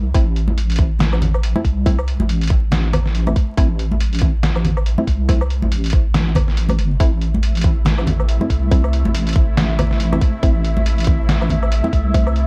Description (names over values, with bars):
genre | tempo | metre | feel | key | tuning
deep dubstep | 140 BPM | 4/4 | swing 57% on 16ths, half-time | A minor | A4 = 440 Hz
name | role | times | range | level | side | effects
deep soft wobble bass | bass | 0.0-12.5 s | G1 to C2 | -20 LUFS | equal | chorus
filtered dub chord stab | stabs | 0.1-12.3 s | A3 to E4 | -29 LUFS | equal | chorus, dub echo
electronic kick drum | drums | 0.1-12.2 s | none | -18 LUFS | equal | none
trip hop sampler-style drum kit | drums | 0.1-12.5 s | hi-hat, snare drum, woodblock | -26 LUFS | equal | none
congas | percussion | 0.5-11.9 s | none | -27 LUFS | equal | none
bowed-like drone | sustained chords | 7.3-12.5 s | C3 to E4 | -30 LUFS | equal | built-in reverb
wind-like tuned noise texture | texture | 7.5-12.5 s | E5 | -33 LUFS | equal | built-in reverb
room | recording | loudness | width
little or no reverb | vinyl crackle | -17 LUFS | mono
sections
0.0-12.5 A section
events
kick drops out 6.6-7.0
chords
0.0 Am